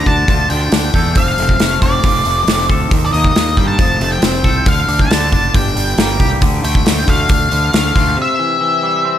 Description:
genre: quiet-loud alternative rock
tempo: 137 BPM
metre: 4/4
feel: straight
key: F major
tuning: A4 = 440 Hz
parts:
  - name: octave-fuzz lead guitar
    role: melody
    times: 0.0-9.2 s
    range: D5 to A5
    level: -17 LUFS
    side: left 1 dB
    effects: distortion
  - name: twangy electric guitar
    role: arpeggios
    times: 0.0-9.2 s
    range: G2 to A4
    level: -20 LUFS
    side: left 1 dB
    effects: slapback echo
  - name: fuzz fingered electric bass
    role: bass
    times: 0.0-8.2 s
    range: F1 to G2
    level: -18 LUFS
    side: equal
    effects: overdrive
  - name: loose indie drum kit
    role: drums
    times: 0.1-8.1 s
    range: hi-hat, kick drum, snare drum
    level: -15 LUFS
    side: equal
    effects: none
room: light reverb, studio reverb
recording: none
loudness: -11 LUFS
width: side -11 dB against mid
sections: 0.0-9.2 A section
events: break 8.2-9.2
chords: 0.0 Dm; 1.2 F; 2.9 Eb; 3.8 F; 4.7 D5; 5.5 Gm; 6.4 Dm; 8.2 C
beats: 0.28 0.72 | 1.16 1.60 2.04 2.48 | 2.91 3.35 3.79 4.23 | 4.67 5.11 5.54 5.98 | 6.42 6.86 7.30 7.74 | 8.17 8.61 9.05

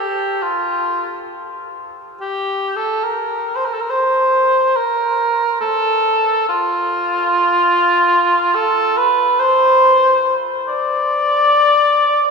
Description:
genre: classical, free, expressive piece for unaccompanied cor anglais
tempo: 70 BPM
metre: 4/4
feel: rubato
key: F major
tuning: A4 = 440 Hz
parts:
  - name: mellow cor anglais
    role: solo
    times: 0.0-12.3 s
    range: F4 to D5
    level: -14 LUFS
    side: equal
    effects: none
room: wet cathedral reverb, RT60 6.5 s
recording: recorded in a church or concert hall, studio reverb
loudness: -13 LUFS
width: side -4 dB against mid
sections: 0.0-12.3 A section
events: none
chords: none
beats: 0.40 1.30 | 2.17 3.03 3.89 4.75 | 5.59 6.46 7.29 8.11 | 8.96 9.81 10.67 11.51

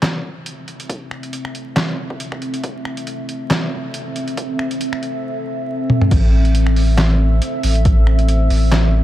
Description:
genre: deep dubstep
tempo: 138 BPM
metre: 4/4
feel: swing 55% on 16ths, half-time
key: A minor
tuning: A4 = 440 Hz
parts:
  - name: deep dark ambient pad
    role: sustained chords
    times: 0.5-9.0 s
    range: C4 to E5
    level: -24 LUFS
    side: equal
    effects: chorus, built-in reverb
  - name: trip hop sampler-style drum kit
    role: drums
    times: 0.0-8.8 s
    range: crash cymbal, finger snaps, handclaps, hi-hat, snare drum, toms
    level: -21 LUFS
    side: equal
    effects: small room ambience
  - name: electronic kick drum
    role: drums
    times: 0.9-7.9 s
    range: none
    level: -17 LUFS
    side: equal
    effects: overdrive, high-pass filter on kick, small room ambience
  - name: saturated sub bass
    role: bass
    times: 6.1-9.0 s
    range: A1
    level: -14 LUFS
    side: equal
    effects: none
room: digital ambience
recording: dark, warm production, vinyl crackle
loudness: -15 LUFS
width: side -14 dB against mid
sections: 0.0-6.1 A section; 6.1-9.0 B section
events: build-up 0.0-6.1; filter sweep on ambient pad 0.0-6.1; drum fill 5.9; drop 6.1-9.0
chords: 0.0 Am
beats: 0.03 0.46 | 0.90 1.33 1.76 2.20 | 2.63 3.07 3.50 3.94 | 4.37 4.81 5.24 5.68 | 6.11 6.55 6.98 7.42 | 7.85 8.29 8.72

